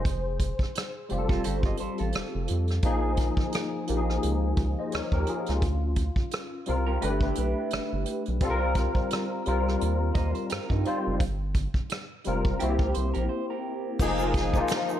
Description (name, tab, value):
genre	R&B, neo-soul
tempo	86 BPM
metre	4/4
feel	swing 57% on 16ths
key	unclear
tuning	A4 = 439 Hz
part	barky tine electric piano	accompaniment	0.0-15.0 s	F3 to Eb5	-29 LUFS	left 2 dB	ensemble chorus
part	rubbery square bass	bass	0.0-14.6 s	F1 to G2	-29 LUFS	equal	none
part	vintage brush drum kit	drums	0.1-14.9 s	crash cymbal, hi-hat, kick drum, rim click, snare drum	-29 LUFS	right 1 dB	none
part	electric guitar through a small old amp	second line	1.3-14.0 s	Eb4 to Eb5	-35 LUFS	right 8 dB	phaser
part	egg shaker and finger snaps	percussion	14.0-15.0 s	none	-42 LUFS	right 4 dB	none
part	mellow saxophone section	stabs	14.2-15.0 s	C3 to Ab4	-37 LUFS	right 5 dB	none
room	light reverb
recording	dark, warm production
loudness	-25 LUFS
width	side -11 dB against mid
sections	0.0-14.0 A section; 14.0-15.0 B section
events	break 13.3-14.0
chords	0.0 F; 2.8 Bbm7; 5.6 C9sus4; 7.0 G; 8.4 Cm7; 11.2 Gm7; 12.6 C7; 14.0 Fm7